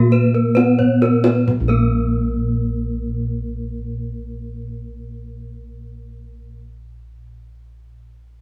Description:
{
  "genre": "Balinese gamelan",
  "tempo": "free time",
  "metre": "none",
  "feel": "none",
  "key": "unclear",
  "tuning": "A4 = 440 Hz",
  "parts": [
    { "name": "gamelan-type bronze metallophone", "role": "melody", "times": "0.0-6.7 s", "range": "Bb3 to Cb4", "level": "-22 LUFS", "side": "equal", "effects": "none" },
    { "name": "gamelan-type bronze metallophone", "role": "arpeggios", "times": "0.0-6.7 s", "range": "Gb4-40c to C5+50c", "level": "-28 LUFS", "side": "equal", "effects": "none" },
    { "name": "gamelan-type bossed gongs", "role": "bass", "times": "0.0-6.6 s", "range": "Bb1 to C4+50c", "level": "-25 LUFS", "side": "equal", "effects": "none" },
    { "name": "gamelan-type bronze metallophone", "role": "arpeggios", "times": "0.1-6.6 s", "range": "Bb4 to Cb5", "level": "-28 LUFS", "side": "equal", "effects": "none" },
    { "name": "kendang", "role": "percussion", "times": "0.1-1.9 s", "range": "none", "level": "-25 LUFS", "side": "equal", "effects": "none" }
  ],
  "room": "moderate large studio reverb, RT60 1.0 s",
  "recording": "band playing live in one room",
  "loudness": "-18 LUFS",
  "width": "mono",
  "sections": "0.0-1.5 A section; 1.5-8.4 B section",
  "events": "slowing down 0.0-1.5; drum fill 0.8-1.5",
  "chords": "none",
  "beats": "free time"
}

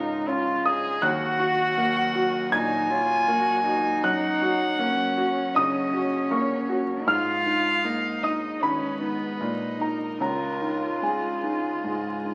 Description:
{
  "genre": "neoclassical piano and strings",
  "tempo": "78 BPM",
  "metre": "4/4",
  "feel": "uneven beats, rubato",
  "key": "Eb minor",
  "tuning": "A4 = 440 Hz",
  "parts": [
    { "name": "rich violin", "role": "melody", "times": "0.0-12.3 s", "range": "Ab4 to Ab5", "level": "-30 LUFS", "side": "equal", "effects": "none" },
    { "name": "warm cello", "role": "second line", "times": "0.0-12.3 s", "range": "Cb4 to Ab4", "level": "-31 LUFS", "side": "equal", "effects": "none" },
    { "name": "clear concert grand piano", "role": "accompaniment", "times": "0.0-12.3 s", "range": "Db2 to Ab6", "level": "-28 LUFS", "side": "equal", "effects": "none" },
    { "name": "rich chamber string section", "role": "sustained chords", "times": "0.0-12.3 s", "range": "Gb3 to Eb5", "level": "-41 LUFS", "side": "equal", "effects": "none" }
  ],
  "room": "moderate large studio reverb, RT60 1.2 s",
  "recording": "very old 78 rpm record, vinyl crackle",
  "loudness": "-25 LUFS",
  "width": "mono",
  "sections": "0.0-12.3 A section",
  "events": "none",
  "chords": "0.0 Dbadd9; 1.0 Ebm; 4.0 Gb; 7.1 Abmadd9; 10.2 Dbadd9",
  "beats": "0.28 | 1.03 1.79 2.54 3.29 | 4.05 4.81 5.57 6.32 | 7.08 7.85 8.63 9.41 | 10.21 11.04 11.85"
}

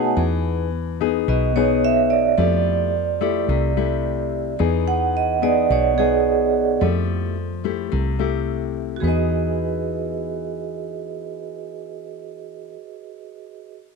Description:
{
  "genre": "bossa nova",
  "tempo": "108 BPM",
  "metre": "4/4",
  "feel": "straight",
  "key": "E major",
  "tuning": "A4 = 443 Hz",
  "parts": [
    { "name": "nylon-string guitar", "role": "accompaniment", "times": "0.0-12.8 s", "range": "B2 to G#4", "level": "-23 LUFS", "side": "left 15 dB", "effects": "none" },
    { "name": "vibraphone with medium hard mallets", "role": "accompaniment", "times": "0.0-13.8 s", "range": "A3 to A5", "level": "-22 LUFS", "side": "right 12 dB", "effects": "none" },
    { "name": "deep dub fingered electric bass", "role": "bass", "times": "0.2-12.7 s", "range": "B1 to F2", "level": "-24 LUFS", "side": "equal", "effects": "none" }
  ],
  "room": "light reverb, small room ambience",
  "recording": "1960s-style stereo with parts hard left and right",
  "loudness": "-18 LUFS",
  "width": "side -4 dB against mid",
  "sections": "0.2-9.0 A section; 9.0-11.2 B section",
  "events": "vibraphone fill 0.0; vibraphone solo 0.2-9.0",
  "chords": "0.2 Emaj7; 2.4 Fmaj9; 4.6 Emaj7; 6.8 Fmaj9; 9.0 Emaj7",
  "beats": "| 0.17 0.72 1.27 1.83 | 2.38 2.93 3.49 4.04 | 4.60 5.15 5.71 6.26 | 6.81 7.37 7.92 8.47 | 9.03 9.58 10.13 10.69"
}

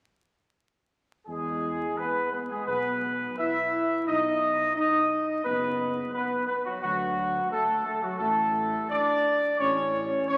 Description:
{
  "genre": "classical",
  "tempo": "87 BPM",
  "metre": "4/4",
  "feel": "straight",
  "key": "E major",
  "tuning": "A4 = 440 Hz",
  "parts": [
    { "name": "dark trumpet section", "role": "melody", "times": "1.3-10.4 s", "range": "F#4 to E5", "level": "-28 LUFS", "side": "equal", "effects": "none" },
    { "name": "mellow French horn section", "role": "sustained chords", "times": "1.3-10.4 s", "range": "F#3 to E4", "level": "-38 LUFS", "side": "equal", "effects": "none" },
    { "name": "mellow trombone section", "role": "sustained chords", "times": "1.3-10.4 s", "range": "F#3 to E4", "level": "-37 LUFS", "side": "equal", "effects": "none" },
    { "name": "dark tuba", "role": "bass", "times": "1.3-10.2 s", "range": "F#1 to E2", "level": "-41 LUFS", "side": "equal", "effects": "none" }
  ],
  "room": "wet church reverb, RT60 3.1 s",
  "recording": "vinyl crackle",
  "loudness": "-27 LUFS",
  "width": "mono",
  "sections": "1.3-10.4 A section",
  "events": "none",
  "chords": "1.3 E; 4.1 B; 6.8 D; 9.6 A",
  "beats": "| 1.28 1.98 2.68 3.39 | 4.08 4.77 5.46 6.14 | 6.83 7.52 8.20 8.91 | 9.60 10.28"
}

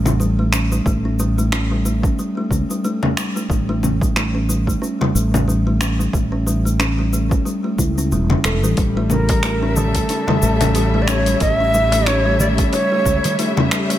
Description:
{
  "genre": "organic downtempo",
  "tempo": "91 BPM",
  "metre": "4/4",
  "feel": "swing 57% on 16ths",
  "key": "unclear",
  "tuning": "A4 = 440 Hz",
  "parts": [
    { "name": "kalimba", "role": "arpeggios", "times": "0.0-14.0 s", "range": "G3 to A4", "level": "-21 LUFS", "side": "equal", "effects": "ping-pong delay, shimmer reverb" },
    { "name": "mellow fretless electric bass", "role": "bass", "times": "0.0-13.2 s", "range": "E1 to C#2", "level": "-19 LUFS", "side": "equal", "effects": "tube saturation, lush chorus, sidechain pumping" },
    { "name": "deep house drum kit", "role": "drums", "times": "0.1-14.0 s", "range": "congas, finger snaps, hi-hat, shaker", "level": "-22 LUFS", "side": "left 1 dB", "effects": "none" },
    { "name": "electronic kick drum", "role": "drums", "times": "0.9-13.2 s", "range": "none", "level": "-20 LUFS", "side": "equal", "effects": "none" },
    { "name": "warm studio string section", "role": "sustained chords", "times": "8.8-14.0 s", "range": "C#3 to E5", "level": "-25 LUFS", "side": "left 3 dB", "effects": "sidechain pumping, shimmer reverb" },
    { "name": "bright Native American-style cedar flute", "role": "melody", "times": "9.1-13.3 s", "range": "A4 to E5", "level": "-20 LUFS", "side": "equal", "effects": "tape echo, shimmer reverb" },
    { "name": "darbuka", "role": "percussion", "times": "9.3-14.0 s", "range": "none", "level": "-27 LUFS", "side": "right 1 dB", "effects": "none" }
  ],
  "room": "light reverb, small room ambience",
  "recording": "none",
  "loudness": "-15 LUFS",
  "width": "side -12 dB against mid",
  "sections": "0.0-14.0 A section",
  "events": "none",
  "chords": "0.0 A7",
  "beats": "0.20 | 0.86 1.52 2.18 2.84 | 3.50 4.16 4.82 5.48 | 6.13 6.79 7.45 8.11 | 8.77 9.43 10.09 10.75 | 11.41 12.07 12.73 13.39"
}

